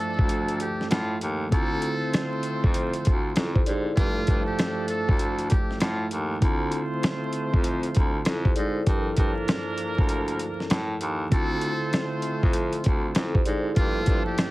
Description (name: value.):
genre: hip hop, boom-bap hip-hop.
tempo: 98 BPM.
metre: 4/4.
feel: swing 62% on 16ths.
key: D minor.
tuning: A4 = 436 Hz.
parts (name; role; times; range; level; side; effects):
trumpet with metal mute; melody; 0.0-6.1, 11.3-14.5 s; F4 to A4; -33 LUFS; equal; high-pass filter, low-pass filter, plate reverb, ping-pong delay.
mellow tine electric piano; accompaniment; 0.0-14.5 s; G2 to D5; -30 LUFS; equal; medium stereo tremolo, high-pass filter, low-pass filter, plate reverb.
clear horn section; stabs; 0.0-14.5 s; F3 to C5; -34 LUFS; right 1 dB; high-pass filter, low-pass filter, plate reverb, ping-pong delay.
warm baritone saxophone; bass; 0.2-14.2 s; D2 to A2; -29 LUFS; equal; none.
dusty soul sampler-style drum kit; drums; 0.2-14.5 s; hi-hat, kick drum, rim click, snare drum; -24 LUFS; equal; none.
room: light reverb.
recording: heavily compressed radio sound, vinyl crackle.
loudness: -22 LUFS.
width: side -19 dB against mid.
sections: 0.0-14.5 A section.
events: none.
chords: 0.0 Gsus2; 1.5 Dm9; 4.0 Gsus2; 6.4 Dm9; 8.9 Gm9; 11.3 Dm9; 13.8 Gm9.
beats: 0.30 0.91 | 1.52 2.13 2.75 3.36 | 3.97 4.58 5.20 5.81 | 6.42 7.03 7.64 8.26 | 8.87 9.48 10.09 10.71 | 11.32 11.93 12.54 13.15 | 13.77 14.38.